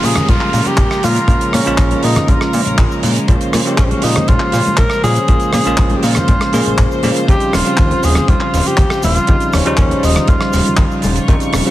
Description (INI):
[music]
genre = nu-disco, nu disco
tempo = 120 BPM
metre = 4/4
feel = straight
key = Bb dorian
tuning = A4 = 440 Hz
[part]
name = breathy tenor saxophone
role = melody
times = 0.0-11.0 s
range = C4 to Bb4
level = -19 LUFS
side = equal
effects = tape echo
[part]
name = bell-like tine electric piano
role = accompaniment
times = 0.0-11.7 s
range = Db3 to C5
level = -18 LUFS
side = right 1 dB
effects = sidechain pumping, slapback echo
[part]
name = warm studio string section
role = sustained chords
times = 0.0-11.7 s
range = G3 to Db6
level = -24 LUFS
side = left 1 dB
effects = sidechain pumping
[part]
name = fat analog bass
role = bass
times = 0.0-11.6 s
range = Eb1 to Bb2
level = -17 LUFS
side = equal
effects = none
[part]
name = damped 70s drum kit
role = drums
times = 0.0-11.7 s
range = handclaps, hi-hat, rim click, shaker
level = -20 LUFS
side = right 2 dB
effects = none
[part]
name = downlifter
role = sound effects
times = 0.0-3.3 s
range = none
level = -28 LUFS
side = equal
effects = none
[part]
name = congas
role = percussion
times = 0.2-11.6 s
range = none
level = -25 LUFS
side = left 3 dB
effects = none
[part]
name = kick drum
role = drums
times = 0.3-11.4 s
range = none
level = -14 LUFS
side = equal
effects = none
[sound]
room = light reverb, small room ambience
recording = heavily compressed radio sound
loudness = -11 LUFS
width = side -14 dB against mid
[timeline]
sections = 0.0-11.7 A section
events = none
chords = 0.0 Bbm7; 7.3 Eb13